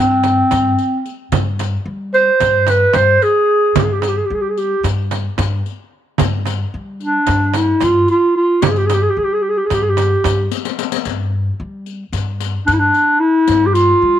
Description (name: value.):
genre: Turkish makam ensemble.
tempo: 222 BPM (eighths).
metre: 9/8.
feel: straight.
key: G makam hicaz.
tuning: A4 = 441 Hz.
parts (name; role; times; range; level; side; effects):
breathy clarinet; melody; 0.0-14.2 s; C4 to C5; -13 LUFS; equal; none.
upright bass; bass; 0.0-14.2 s; G2 to G3; -19 LUFS; left 1 dB; none.
frame drum; percussion; 0.2-10.4 s; none; -21 LUFS; right 11 dB; none.
riq; percussion; 0.2-13.9 s; none; -26 LUFS; left 16 dB; none.
room: light reverb, small room ambience.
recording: 1960s-style stereo with parts hard left and right.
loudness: -13 LUFS.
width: side -10 dB against mid.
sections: 0.0-11.1 A section; 11.1-14.2 A section.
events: drum fill 10.5-11.1.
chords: none.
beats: 0.24 0.52 0.79 1.06 | 1.33 1.60 1.87 2.14 2.41 2.68 2.95 3.22 3.49 | 3.76 4.03 4.30 4.57 4.84 5.11 5.38 5.65 5.92 | 6.19 6.46 6.74 7.00 7.28 7.55 7.82 8.09 8.36 | 8.63 8.90 9.17 9.44 9.71 9.98 10.25 10.52 10.79 | 11.06 11.33 11.60 11.87 12.14 12.41 12.68 12.95 13.22 | 13.49 13.76 14.03.